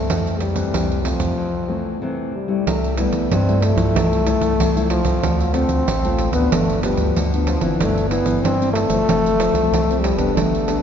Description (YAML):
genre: samba and choro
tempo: 94 BPM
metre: 4/4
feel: straight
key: C major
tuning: A4 = 441 Hz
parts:
  - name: breathy trombone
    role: melody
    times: 0.0-10.8 s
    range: F3 to C4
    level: -21 LUFS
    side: left 2 dB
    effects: none
  - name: nylon-string guitar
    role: accompaniment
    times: 0.0-10.8 s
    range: F2 to A4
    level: -22 LUFS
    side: left 2 dB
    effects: none
  - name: round analog bass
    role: bass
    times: 0.1-10.8 s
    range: F1 to G2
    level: -23 LUFS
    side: right 1 dB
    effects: none
  - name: pandeiro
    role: percussion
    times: 0.1-10.8 s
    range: none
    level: -23 LUFS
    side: right 4 dB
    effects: none
room: wet church reverb, RT60 3.4 s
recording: recorded in a church or concert hall, nothing above 7.5 kHz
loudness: -16 LUFS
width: side -8 dB against mid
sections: 0.0-2.7 A section; 2.7-10.8 B section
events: break 1.4-2.7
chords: 0.1 C6; 4.0 Fmaj7/C; 5.2 Dm7; 6.5 G7; 7.8 C/G; 9.1 F